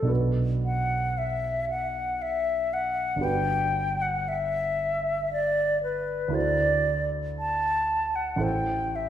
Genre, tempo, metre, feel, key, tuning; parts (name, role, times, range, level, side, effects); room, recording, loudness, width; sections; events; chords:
classical, impressionist duo for flute and grand piano; 57 BPM; 3/4; rubato; G major; A4 = 440 Hz
mellow hollow silver concert flute; melody; 0.0-9.1 s; A4 to A5; -26 LUFS; left 1 dB
warm concert grand piano; accompaniment; 0.0-9.1 s; G1 to C5; -29 LUFS; right 2 dB
wet recital hall reverb, RT60 1.7 s; heard from further back in the room; -24 LUFS; side -10 dB against mid
0.0-9.1 A section
0.1 Bm7; 3.2 Gmaj7; 6.4 D9; 8.4 Am7